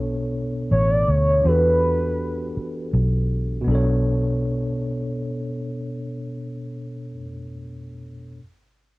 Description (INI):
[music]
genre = R&B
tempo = 54 BPM (dotted quarters)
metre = 6/8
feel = straight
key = B minor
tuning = A4 = 439 Hz
[part]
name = tine electric piano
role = accompaniment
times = 0.0-8.4 s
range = B2 to C#5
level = -26 LUFS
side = equal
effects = overdrive, fast stereo tremolo, cassette tape
[part]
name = vintage muted fingered electric bass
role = bass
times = 0.0-7.1 s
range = A1 to E2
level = -22 LUFS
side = equal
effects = none
[part]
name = gliding portamento lead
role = melody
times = 0.7-2.9 s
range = B4 to D5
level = -21 LUFS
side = equal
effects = chorus, cassette tape, plate reverb
[sound]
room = light reverb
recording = home recording on cassette, faint mains hum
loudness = -20 LUFS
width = side -21 dB against mid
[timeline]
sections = 0.0-3.7 A section; 3.7-5.9 B section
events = none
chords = 0.0 Bm9; 1.4 Em11; 3.7 Bm9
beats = 0.33 | 1.44 2.55 | 3.66 4.77